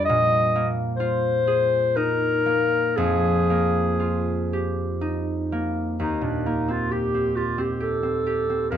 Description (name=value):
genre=classical, impressionist duo for clarinet and harp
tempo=58-67 BPM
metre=3/4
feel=rubato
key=Eb major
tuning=A4 = 440 Hz
part: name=warm clarinet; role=melody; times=0.0-8.8 s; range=D4 to Eb5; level=-22 LUFS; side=left 2 dB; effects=none
part: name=concert harp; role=accompaniment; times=0.0-8.8 s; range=Eb2 to Bb4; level=-24 LUFS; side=right 1 dB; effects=none
room=light reverb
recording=none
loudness=-21 LUFS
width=side -9 dB against mid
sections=0.0-6.0 A section; 6.0-8.8 B section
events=none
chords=0.1 Bb11; 3.0 Fm11; 6.0 Eb6